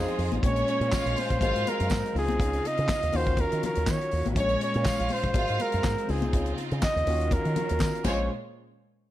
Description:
disco; 122 BPM; 4/4; swing 56% on 16ths; Bb minor; A4 = 440 Hz
warm flugelhorn; melody; 0.0-8.3 s; Ab4 to Eb5; -29 LUFS; right 1 dB
warm studio violin section; second line; 0.0-8.3 s; Ab3 to F5; -32 LUFS; right 2 dB
barky tine electric piano; accompaniment; 0.0-8.3 s; Bb2 to F5; -33 LUFS; left 3 dB; overdrive
clear symphonic string section; sustained chords; 0.0-8.3 s; Bb2 to F5; -38 LUFS; equal
fingered electric bass with an envelope filter; bass; 0.0-8.3 s; Ab1 to Eb3; -29 LUFS; equal
damped 70s drum kit; drums; 0.1-8.2 s; crash cymbal, handclaps, hi-hat, kick drum, snare drum; -30 LUFS; equal
congas; percussion; 0.3-8.3 s; -37 LUFS; left 6 dB
tambourine; percussion; 0.9-8.3 s; -45 LUFS; right 9 dB
light reverb, small room ambience; -24 LUFS; side -13 dB against mid
0.4-8.3 A section
0.4 Bbm7; 1.4 Ab13; 2.1 Dbmaj9; 3.1 Ebm9; 4.4 Bbm7; 5.3 Ab13; 6.1 Dbmaj9; 7.1 Ebm9; 8.1 Bbm9; 8.3 N.C.

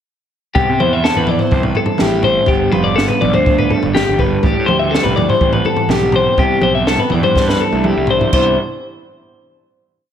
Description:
math rock and midwest emo; 123 BPM; 4/4; straight; C major; A4 = 440 Hz
electric guitar through a small old amp; accompaniment; 0.5-8.6 s; E2 to G4; -20 LUFS; right 8 dB; spring reverb
twelve-string electric guitar; arpeggios; 0.6-8.6 s; G4 to E5; -15 LUFS; left 4 dB
fuzz picked electric bass; bass; 0.6-8.6 s; F1 to C3; -20 LUFS; right 1 dB; overdrive
compact cocktail drum kit; drums; 0.6-8.4 s; crash cymbal, kick drum, snare drum, toms; -17 LUFS; equal
wet recital hall reverb, RT60 1.6 s, small room ambience; big arena sound; -12 LUFS; side -9 dB against mid
0.6-8.3 A section; 8.3-10.1 final chord
drum fill 7.4-8.3
0.6 Cmaj7; 2.5 G7; 4.4 Am7; 6.4 Cmaj9

